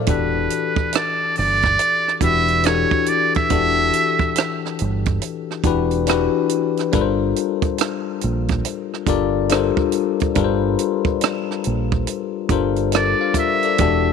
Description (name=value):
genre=R&B, neo-soul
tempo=70 BPM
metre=4/4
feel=swing 63% on 16ths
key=unclear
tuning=A4 = 440 Hz
part: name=bell-like tine electric piano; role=accompaniment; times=0.0-14.1 s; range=E3 to F5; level=-20 LUFS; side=left 12 dB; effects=phaser
part: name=trumpet with metal mute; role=melody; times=0.1-4.6, 13.0-14.1 s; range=B4 to E5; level=-19 LUFS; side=right 2 dB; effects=slapback echo
part: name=deep dub fingered electric bass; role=bass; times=0.1-14.1 s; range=E1 to Bb1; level=-23 LUFS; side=right 2 dB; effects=tube saturation
part: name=compact cocktail drum kit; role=drums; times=0.1-14.0 s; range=hi-hat, kick drum, rim click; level=-22 LUFS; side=right 7 dB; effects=none
room=light reverb, studio reverb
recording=1960s-style stereo with parts hard left and right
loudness=-17 LUFS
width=side -6 dB against mid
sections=0.0-13.8 A section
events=none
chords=0.1 Em11; 6.9 Gm11